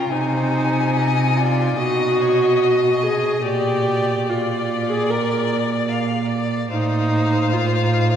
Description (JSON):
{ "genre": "classical, slow romantic movement for string quartet", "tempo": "73 BPM", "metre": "4/4", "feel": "rubato", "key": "unclear", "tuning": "A4 = 441 Hz", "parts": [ { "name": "warm violin", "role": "melody", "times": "0.0-8.2 s", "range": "D5 to Ab5", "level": "-26 LUFS", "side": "left 8 dB", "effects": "none" }, { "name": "rich violin", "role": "second line", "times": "0.0-8.2 s", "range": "Bb4 to F5", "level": "-27 LUFS", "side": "left 3 dB", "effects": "none" }, { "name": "dark viola", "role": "accompaniment", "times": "0.0-8.2 s", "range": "Eb4 to Bb4", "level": "-20 LUFS", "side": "equal", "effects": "none" }, { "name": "rich cello", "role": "bass", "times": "0.0-8.2 s", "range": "A2 to Db3", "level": "-22 LUFS", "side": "right 3 dB", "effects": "none" } ], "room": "wet cathedral reverb, RT60 6.0 s", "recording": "recorded in a church or concert hall", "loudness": "-17 LUFS", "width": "side -8 dB against mid", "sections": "0.0-8.2 A section", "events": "none", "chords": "0.1 Ab/C; 1.8 B; 3.4 Bb; 6.7 F7/A" }